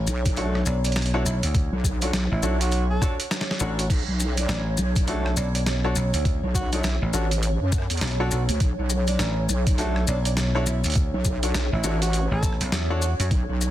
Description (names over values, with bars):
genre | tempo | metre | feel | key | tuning
glitch hop | 102 BPM | 4/4 | swing 61% on 16ths | B minor | A4 = 437 Hz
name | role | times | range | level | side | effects
vintage slap bass | bass | 0.0-13.3 s | A1 to F#2 | -24 LUFS | equal | tube saturation
granular cloud pad | texture | 0.0-13.7 s | C#5 | -34 LUFS | right 2 dB | built-in reverb, sidechain pumping
wobble bass | bass | 0.1-13.7 s | A1 to F#2 | -24 LUFS | equal | chorus, tube saturation
maracas | percussion | 0.1-13.7 s | none | -33 LUFS | left 5 dB | none
boom bap sampler-style drum kit | drums | 0.3-13.5 s | crash cymbal, hi-hat, rim click, snare drum | -30 LUFS | right 1 dB | none
electronic kick drum | drums | 0.3-13.5 s | none | -23 LUFS | equal | none
warm tenor saxophone | melody | 0.4-13.3 s | A3 to A4 | -34 LUFS | right 1 dB | tape echo
clear concert grand piano | stabs | 0.4-13.0 s | D4 to C#5 | -32 LUFS | left 2 dB | vintage 12-bit sampler grit, sidechain pumping, tape echo
room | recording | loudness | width
digital ambience | dense, heavily limited modern master | -21 LUFS | side -13 dB against mid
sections
0.0-13.7 A section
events
kick drops out 3.3-3.9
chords
0.0 Bm9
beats
0.37 0.96 | 1.55 2.13 2.72 3.31 | 3.90 4.49 5.08 5.66 | 6.25 6.84 7.43 8.02 | 8.61 9.19 9.78 10.37 | 10.96 11.55 12.13 12.72 | 13.31